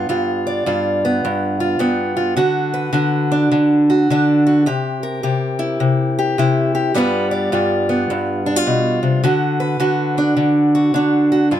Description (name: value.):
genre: blues.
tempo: 105 BPM.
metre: 4/4.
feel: swing 64% on 8ths.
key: G mixolydian.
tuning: A4 = 441 Hz.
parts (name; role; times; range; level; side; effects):
fingerpicked steel-string acoustic guitar; solo; 0.0-11.6 s; G2 to D5; -15 LUFS; equal; none.
room: little or no reverb.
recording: close, detailed microphones.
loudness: -15 LUFS.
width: side -10 dB against mid.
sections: 0.0-11.5 A section.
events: none.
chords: 0.0 G7; 2.4 D; 4.7 C7; 7.0 G7; 9.2 D.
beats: | 0.09 0.67 1.24 1.81 | 2.38 2.95 3.52 4.09 | 4.67 5.24 5.81 6.38 | 6.95 7.52 8.10 8.67 | 9.24 9.81 10.38 10.95 | 11.52.